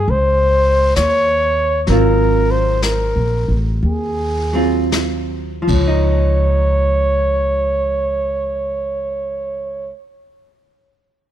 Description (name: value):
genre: jazz ballad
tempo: 49-70 BPM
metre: 4/4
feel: swing 67% on 8ths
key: Db major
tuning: A4 = 440 Hz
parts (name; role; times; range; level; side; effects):
- mellow flugelhorn; melody; 0.0-9.9 s; Ab4 to Db5; -17 LUFS; equal; none
- vintage hollow-body jazz guitar; accompaniment; 0.0-10.1 s; F3 to Ab4; -21 LUFS; right 2 dB; none
- upright bass; bass; 0.0-9.9 s; Ab1 to Eb2; -18 LUFS; equal; none
- vintage brush drum kit; drums; 0.1-5.9 s; brushed snare drum, hi-hat, kick drum, ride cymbal, snare drum; -26 LUFS; left 2 dB; none
room: light reverb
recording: none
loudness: -14 LUFS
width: side -11 dB against mid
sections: 0.0-6.1 A section; 6.1-11.0 B section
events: slowing down 0.0-6.1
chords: 0.0 Gb69; 1.9 Ab13; 5.5 Dbadd9